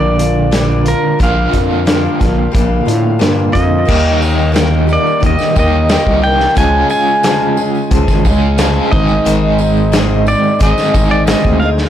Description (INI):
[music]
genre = folk rock and heartland rock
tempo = 89 BPM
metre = 4/4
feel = straight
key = unclear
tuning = A4 = 443 Hz
[part]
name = pedal steel guitar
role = melody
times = 0.0-11.7 s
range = Bb4 to Ab5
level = -17 LUFS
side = right 1 dB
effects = digital delay
[part]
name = picked acoustic archtop guitar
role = accompaniment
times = 0.0-11.9 s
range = Ab2 to Ab4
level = -18 LUFS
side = left 4 dB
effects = none
[part]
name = crunchy overdriven guitar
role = riff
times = 0.0-11.6 s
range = Ab2 to Ab4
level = -17 LUFS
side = right 1 dB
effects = tremolo
[part]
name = growling FM bass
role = bass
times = 0.0-11.9 s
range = Ab1 to A2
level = -15 LUFS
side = equal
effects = tube saturation
[part]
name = vintage drum kit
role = drums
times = 0.2-11.9 s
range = crash cymbal, hi-hat, kick drum, snare drum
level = -16 LUFS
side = equal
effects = none
[part]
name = tambourine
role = percussion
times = 3.9-11.9 s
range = none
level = -33 LUFS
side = right 8 dB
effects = none
[sound]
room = light reverb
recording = blown-out, overdriven recording, overdrive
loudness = -10 LUFS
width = side -10 dB against mid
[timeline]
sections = 0.0-3.9 A section; 3.9-11.9 B section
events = none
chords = 0.0 Bb6; 3.9 Eb; 6.6 Db; 8.9 Ab